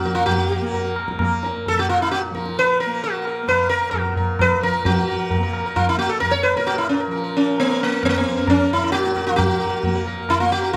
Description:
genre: indian classical, Hindustani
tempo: 132 BPM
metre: 5/4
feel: straight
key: Bb raga todi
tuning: A4 = 440 Hz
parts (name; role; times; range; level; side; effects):
- sitar; melody; 0.0-10.8 s; Bb3 to Db5; -22 LUFS; equal; none
- tanpura; drone; 0.0-10.8 s; Bb2 to Bb3; -31 LUFS; equal; none
- tabla; percussion; 0.0-10.8 s; none; -26 LUFS; equal; none
room: moderate recital hall reverb, RT60 1.7 s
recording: none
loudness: -20 LUFS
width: mono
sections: 0.0-4.8 A section; 4.8-10.8 B section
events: none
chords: none

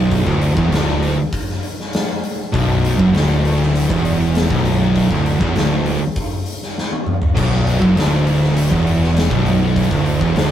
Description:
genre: stoner and doom metal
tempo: 100 BPM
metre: 4/4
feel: straight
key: B minor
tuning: A4 = 440 Hz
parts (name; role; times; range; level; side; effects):
- high-gain distorted guitar; riff; 0.0-10.5 s; B1 to F#2; -25 LUFS; left 2 dB; distortion
- thick fuzz guitar; riff; 0.0-10.5 s; B1 to F#2; -24 LUFS; left 5 dB; distortion
- thick fuzz guitar; riff; 0.0-10.5 s; B1 to F#2; -16 LUFS; right 2 dB; distortion
- fuzz picked electric bass; bass; 0.0-10.5 s; B0 to F#1; -22 LUFS; left 1 dB; overdrive
- big rock drum kit; drums; 0.1-10.5 s; crash cymbal, hi-hat, kick drum, snare drum, toms; -21 LUFS; left 1 dB; none
room: moderate small room ambience, RT60 0.5 s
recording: rough rehearsal-room recording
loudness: -14 LUFS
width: side -10 dB against mid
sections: 0.0-10.5 A section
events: drum fill 6.8-7.4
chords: 0.0 Bm

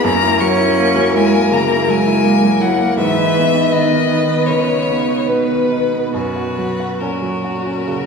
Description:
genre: classical, slow romantic movement for piano quartet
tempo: 68-84 BPM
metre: 4/4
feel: rubato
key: unclear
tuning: A4 = 440 Hz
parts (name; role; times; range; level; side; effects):
- rich violin; melody; 0.0-8.1 s; A#4 to C#6; -20 LUFS; left 6 dB; none
- rich cello; second line; 0.0-8.1 s; A#2 to C#4; -20 LUFS; right 5 dB; none
- rich violin; second line; 0.0-8.1 s; F#4 to B4; -20 LUFS; left 5 dB; none
- clear concert grand piano; accompaniment; 0.0-8.1 s; F#2 to F#4; -17 LUFS; right 1 dB; none
room: wet scoring stage reverb, RT60 1.7 s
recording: heard from further back in the room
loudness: -13 LUFS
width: side -5 dB against mid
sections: 0.0-8.1 A section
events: none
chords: 0.1 F#7; 3.0 G#m; 6.1 F#

